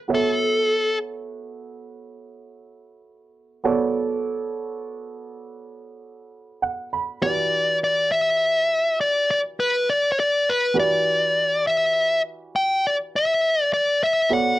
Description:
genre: blues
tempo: 68 BPM (dotted quarters)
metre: 12/8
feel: straight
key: unclear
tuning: A4 = 435 Hz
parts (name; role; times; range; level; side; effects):
- dark upright piano; accompaniment; 0.0-14.6 s; E3 to B5; -26 LUFS; right 4 dB; none
- dark smooth lead guitar; melody; 0.1-1.0, 7.2-14.6 s; A4 to G5; -19 LUFS; left 1 dB; overdrive
room: light reverb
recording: dark, warm production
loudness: -19 LUFS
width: side -16 dB against mid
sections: 0.0-14.6 A section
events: upright piano fill 6.3-7.2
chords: 0.0 Bm7; 7.2 Em7

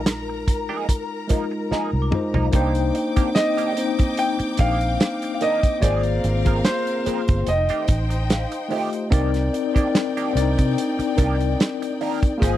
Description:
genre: lush 1970s-style soul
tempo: 73 BPM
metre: 4/4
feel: swing 54% on 16ths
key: C minor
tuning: A4 = 440 Hz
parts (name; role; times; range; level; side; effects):
- warm studio string section; second line; 0.0-12.6 s; C4 to D6; -31 LUFS; left 3 dB; none
- tine electric piano; accompaniment; 0.0-12.6 s; Ab3 to Eb5; -24 LUFS; left 4 dB; medium stereo tremolo
- vintage muted fingered electric bass; bass; 0.0-12.6 s; F1 to C3; -23 LUFS; right 1 dB; none
- electric guitar at the edge of break-up; riff; 0.1-12.6 s; Eb3 to Bb4; -29 LUFS; right 8 dB; wah
- warm soul drum kit; drums; 0.1-12.6 s; hi-hat, kick drum, snare drum, toms; -21 LUFS; right 1 dB; none
- worn celesta; texture; 1.7-12.6 s; F5 to D6; -36 LUFS; equal; none
- clear concert grand piano; melody; 3.3-8.7 s; C5 to G5; -24 LUFS; right 1 dB; none
room: little or no reverb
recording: dry, close 1970s-style studio recording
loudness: -19 LUFS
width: side -13 dB against mid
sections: 0.0-2.5 A section; 2.5-12.6 B section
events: drum fill 1.7-2.5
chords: 0.0 Bb7sus4; 2.5 Cm9; 5.8 Ab69; 7.5 F9; 9.1 Cm9

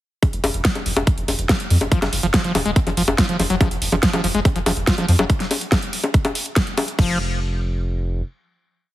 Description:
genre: psychedelic trance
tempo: 142 BPM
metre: 4/4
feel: straight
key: F phrygian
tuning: A4 = 440 Hz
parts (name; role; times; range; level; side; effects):
- big-room dance drum kit; drums; 0.2-7.1 s; bongos, crash cymbal, hi-hat, snare drum; -21 LUFS; left 1 dB; overdrive, studio reverb
- electronic kick drum; drums; 0.2-7.1 s; none; -18 LUFS; equal; overdrive, studio reverb
- round analog bass; bass; 0.3-8.2 s; Eb1 to F2; -22 LUFS; equal; none
- screaming distorted acid line; riff; 1.9-7.2 s; F3 to F4; -23 LUFS; equal; distortion, chorus, auto-pan, sidechain pumping, tape echo
room: light reverb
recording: heavily compressed radio sound, multiband compression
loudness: -17 LUFS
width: side -15 dB against mid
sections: 0.2-7.0 groove; 7.0-8.9 final note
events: none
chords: 0.2 F5; 7.0 N.C.

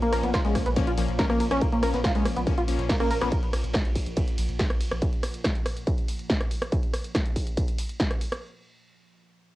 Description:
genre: driving peak-time techno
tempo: 141 BPM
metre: 4/4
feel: straight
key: Bb minor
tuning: A4 = 440 Hz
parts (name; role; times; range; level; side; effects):
- tight sequenced synth; riff; 0.0-3.3 s; Ab3 to Bb4; -27 LUFS; equal; chorus, sidechain pumping, cassette tape, tape echo
- deep dark ambient pad; drone; 0.0-6.8 s; Bb2 to F3; -37 LUFS; right 1 dB; chorus, built-in reverb, sidechain pumping, cassette tape
- punchy analog drum machine; drums; 0.0-8.4 s; hi-hat, ride cymbal, rim click, snare drum; -31 LUFS; equal; overdrive, sidechain pumping on hats, cassette tape, sidechain pumping on cymbals
- vintage brush drum kit; drums; 0.0-5.0 s; hi-hat, ride cymbal, snare drum; -44 LUFS; right 1 dB; sidechain pumping on cymbals, high-pass filter on cymbals, cassette tape, sidechain pumping on hats, high-pass filter on hats, high-pass filter on snare, high-pass filter on room
- supersaw stab; stabs; 0.1-3.3 s; F3 to Db4; -32 LUFS; left 8 dB; sidechain pumping, cassette tape, analog delay
- saturated sub bass; bass; 0.1-5.0 s; Bb1; -33 LUFS; equal; tube saturation, sidechain pumping, low-pass filter
- electronic kick drum; drums; 0.3-8.1 s; none; -26 LUFS; equal; distortion, cassette tape
room: light reverb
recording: home recording on cassette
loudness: -23 LUFS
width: side -17 dB against mid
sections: 0.0-8.4 A section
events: drop 0.0-8.4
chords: 0.0 Bbm

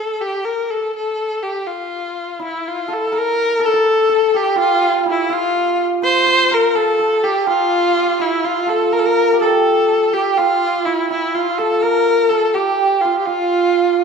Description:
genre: Persian modal ensemble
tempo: 83 BPM (dotted quarters)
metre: 6/8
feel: straight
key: F dastgah mahur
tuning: A4 = 440 Hz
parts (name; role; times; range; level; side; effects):
- rich kamancheh; melody; 0.0-14.0 s; E4 to C5; -16 LUFS; left 3 dB; none
- santur; second line; 2.4-14.0 s; E4 to C5; -18 LUFS; right 7 dB; none
room: wet recital hall reverb, RT60 1.4 s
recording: minimal, uncompressed stereo recording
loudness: -14 LUFS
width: side -6 dB against mid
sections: 0.0-3.1 A section; 3.1-14.0 B section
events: none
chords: none

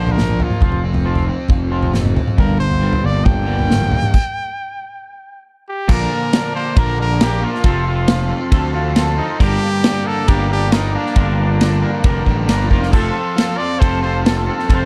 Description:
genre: indie rock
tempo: 137 BPM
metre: 4/4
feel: straight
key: G minor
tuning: A4 = 443 Hz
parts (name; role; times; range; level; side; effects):
- bright trumpet; melody; 0.0-14.9 s; D4 to G5; -26 LUFS; equal; none
- overdriven electric guitar; riff; 0.0-14.9 s; G2 to Bb4; -25 LUFS; equal; lush chorus
- twangy electric guitar; riff; 0.0-14.9 s; G2 to Bb4; -27 LUFS; equal; analog chorus
- fuzz picked electric bass; bass; 0.0-14.9 s; F1 to D2; -21 LUFS; equal; overdrive
- unplugged drum kit; drums; 0.1-14.8 s; crash cymbal, kick drum, ride cymbal, snare drum, toms; -19 LUFS; equal; none
- overdriven combo organ; sustained chords; 5.9-14.9 s; A4 to D6; -36 LUFS; equal; none
room: little or no reverb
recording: dark, warm production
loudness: -16 LUFS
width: mono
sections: 0.0-5.9 A section; 5.9-14.9 B section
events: stop 4.1-5.9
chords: 0.0 Bb; 0.6 F5; 2.4 Gm; 5.9 Bb; 7.6 F; 9.4 Gm; 12.9 F

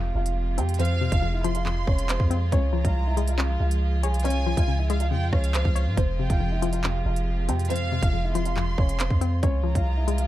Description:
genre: hip hop, drill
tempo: 139 BPM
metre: 4/4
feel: half-time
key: F harmonic minor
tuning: A4 = 435 Hz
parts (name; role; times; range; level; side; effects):
- dark concert grand piano; melody; 0.0-10.3 s; C4 to Ab5; -32 LUFS; right 1 dB; low-pass filter
- hollow square pluck; accompaniment; 0.0-10.3 s; F2 to Db5; -31 LUFS; left 8 dB; chorus, low-pass filter
- warm chamber string section; sustained chords; 0.0-10.3 s; C3 to F4; -34 LUFS; right 3 dB; none
- long sustained 808-style bass; bass; 0.0-10.3 s; F1 to Ab2; -25 LUFS; equal; none
- drill drum kit; drums; 0.3-10.3 s; handclaps, hi-hat, kick drum, rim click; -26 LUFS; equal; none
- warm symphonic violin section; second line; 0.8-10.3 s; F5 to C6; -35 LUFS; right 3 dB; tape echo
room: little or no reverb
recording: none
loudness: -22 LUFS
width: side -14 dB against mid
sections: 0.0-10.3 A section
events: none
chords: 0.0 Fm; 2.5 Db; 6.0 Fm; 9.4 Db

